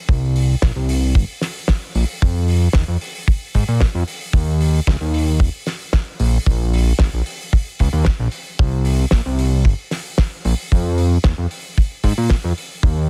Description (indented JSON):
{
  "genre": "nu-disco, nu disco",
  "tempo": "113 BPM",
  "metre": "4/4",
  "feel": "straight",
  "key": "unclear",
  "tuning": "A4 = 440 Hz",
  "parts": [
    { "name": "fat analog bass", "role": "bass", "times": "0.1-13.1 s", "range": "Eb1 to Bb2", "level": "-19 LUFS", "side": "equal", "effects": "tube saturation, sidechain pumping" },
    { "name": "kick drum", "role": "drums", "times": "0.1-12.9 s", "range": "none", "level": "-17 LUFS", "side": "equal", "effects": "none" },
    { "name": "damped 70s drum kit", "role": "drums", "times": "0.4-12.7 s", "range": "hi-hat, snare drum", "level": "-29 LUFS", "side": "equal", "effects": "none" }
  ],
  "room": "little or no reverb",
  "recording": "heavily compressed radio sound, multiband compression",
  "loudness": "-18 LUFS",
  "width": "mono",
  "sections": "0.0-13.1 A section",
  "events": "none",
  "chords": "none",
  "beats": "| 0.09 0.62 1.16 1.69 | 2.22 2.75 3.28 3.81 | 4.34 4.87 5.40 5.93 | 6.46 7.00 7.53 8.06 | 8.59 9.12 9.65 10.18 | 10.71 11.24 11.78 12.31 | 12.84"
}